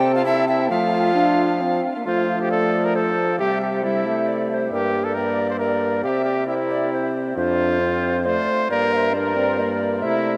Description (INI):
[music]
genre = classical, renaissance-style consort dance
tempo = 136 BPM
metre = 3/4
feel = straight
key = F major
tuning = A4 = 442 Hz
[part]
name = clear cornet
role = melody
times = 0.0-10.3 s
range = E4 to C5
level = -26 LUFS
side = equal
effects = none
[part]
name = tenor recorder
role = second line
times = 0.0-10.4 s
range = Bb4 to G5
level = -26 LUFS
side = equal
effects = none
[part]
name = warm trombone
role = accompaniment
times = 0.0-10.4 s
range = G3 to D4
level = -28 LUFS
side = equal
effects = none
[part]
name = mellow bassoon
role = bass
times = 0.0-10.4 s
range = F2 to F3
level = -27 LUFS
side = equal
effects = none
[sound]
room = wet huge ambient reverb, RT60 8.4 s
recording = in a vast, echoing space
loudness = -21 LUFS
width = mono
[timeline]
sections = 0.0-2.1 A section; 2.1-10.4 B section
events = none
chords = 0.0 C; 0.7 F; 3.4 C; 4.7 Gm; 6.0 C; 7.4 F; 8.7 Gm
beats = 0.26 | 0.70 1.16 1.61 | 2.06 2.50 2.95 | 3.39 3.83 4.28 | 4.72 5.16 5.60 | 6.05 6.49 6.93 | 7.37 7.81 8.26 | 8.70 9.14 9.58 | 10.03